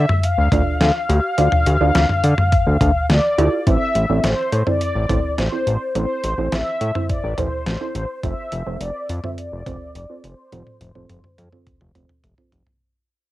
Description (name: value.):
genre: synth-pop.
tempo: 105 BPM.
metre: 4/4.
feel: straight.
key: unclear.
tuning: A4 = 440 Hz.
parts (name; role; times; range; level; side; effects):
mellow synth brass; melody; 0.0-12.2 s; C5 to F5; -22 LUFS; left 2 dB; chorus, low-pass filter, tape echo.
soft round pluck; accompaniment; 0.0-12.7 s; C4 to D5; -26 LUFS; right 5 dB; chorus, low-pass filter, plate reverb.
fat analog bass; bass; 0.0-12.6 s; F1 to D3; -19 LUFS; equal; none.
detuned 8-bit digital drum machine; drums; 0.1-12.8 s; cowbell, hi-hat, kick drum, snare drum, toms; -21 LUFS; equal; cassette tape.
room: moderate small room reverb, RT60 0.5 s.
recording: home recording on cassette.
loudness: -17 LUFS.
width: side -16 dB against mid.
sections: 0.0-3.7 A section; 3.7-12.8 B section.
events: fade-out 3.7-12.8; filter sweep 3.7-12.8; drum fill 10.5-12.8.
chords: 0.0 Dmadd9; 3.7 Am; 8.2 F.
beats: 0.24 0.81 | 1.38 1.95 2.52 3.10 | 3.67 4.24 4.81 5.38 | 5.95 6.52 7.09 7.67 | 8.24 8.81 9.38 9.95 | 10.52 11.10 11.67 12.24.